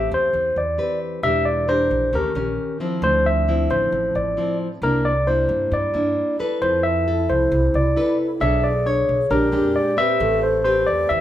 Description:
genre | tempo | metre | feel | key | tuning
bossa nova | 134 BPM | 4/4 | straight | A minor | A4 = 440 Hz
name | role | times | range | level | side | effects
barky tine electric piano | melody | 0.0-11.2 s | A#4 to E5 | -20 LUFS | equal | none
nylon-string guitar | accompaniment | 0.0-11.2 s | A2 to C#5 | -24 LUFS | left 1 dB | none
upright bass | bass | 0.0-11.2 s | E1 to G2 | -24 LUFS | equal | none
breathy mellow alto flute | second line | 6.6-11.2 s | E4 to A4 | -26 LUFS | right 2 dB | none
room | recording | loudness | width
moderate large studio reverb, RT60 0.9 s | band playing live in one room | -18 LUFS | side -12 dB against mid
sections
0.0-11.2 A section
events
none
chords
0.0 Am9; 1.2 Em7b5; 2.1 D#7#11; 3.0 Dm9; 4.8 C9; 6.6 Fmaj7#11; 8.4 Bm9; 9.3 Bb13; 10.2 Am9

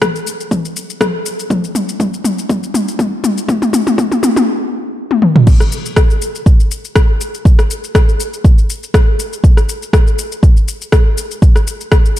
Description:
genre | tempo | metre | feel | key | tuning
house | 121 BPM | 4/4 | swing 54% on 16ths | none | none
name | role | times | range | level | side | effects
deep house drum kit | drums | 0.0-12.2 s | crash cymbal, rim click, shaker, toms | -15 LUFS | left 1 dB | overdrive, small room reverb
electronic kick drum | drums | 0.0-12.0 s | none | -10 LUFS | equal | high-pass filter on kick, small room reverb
room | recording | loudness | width
light reverb | dark, warm production | -11 LUFS | side -13 dB against mid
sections
0.0-5.5 A section; 5.5-12.2 B section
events
build-up 0.0-5.5; drum fill 0.0-4.5, 5.1-5.5; drop 5.5-12.2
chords
none

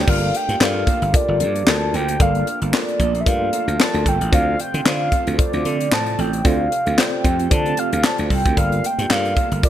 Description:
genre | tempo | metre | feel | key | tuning
early-eighties boogie funk | 113 BPM | 4/4 | swing 56% on 16ths | unclear | A4 = 440 Hz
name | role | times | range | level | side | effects
mellow horn-like synth lead | melody | 0.0-9.7 s | D5 to A5 | -22 LUFS | equal | chorus
mellow tine electric piano | accompaniment | 0.0-9.7 s | F4 to D5 | -26 LUFS | left 4 dB | fast stereo tremolo
chorused pulse-width pad | sustained chords | 0.0-9.7 s | C3 to G4 | -31 LUFS | right 2 dB | none
mellow electric guitar | riff | 0.0-9.7 s | Bb3 to A4 | -29 LUFS | right 7 dB | wide subtle chorus
slap bass | bass | 0.0-9.6 s | G1 to D3 | -22 LUFS | equal | none
tight funk drum kit | drums | 0.1-9.7 s | crash cymbal, handclaps, hi-hat, kick drum, snare drum | -19 LUFS | equal | none
room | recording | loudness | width
light reverb, small room reverb | bright 1980s-style digital production | -16 LUFS | side -11 dB against mid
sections
0.1-9.7 A section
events
none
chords
0.1 Gm9; 4.3 Dm7; 8.6 Gm9

